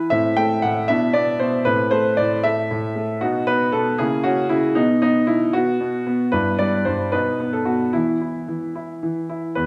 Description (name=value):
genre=classical-period piano sonatina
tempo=77 BPM (dotted quarters)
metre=6/8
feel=rubato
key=E minor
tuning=A4 = 440 Hz
part: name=warm grand piano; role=solo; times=0.0-9.7 s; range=E2 to G5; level=-20 LUFS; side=equal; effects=none
room=moderate recital hall reverb, RT60 1.4 s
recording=none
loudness=-20 LUFS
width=mono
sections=0.0-9.6 A section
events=none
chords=0.1 Am; 0.9 E5/B; 1.7 Am; 3.2 B; 4.0 C#m6; 4.8 N.C.; 6.3 Em/G; 7.1 B; 7.9 E5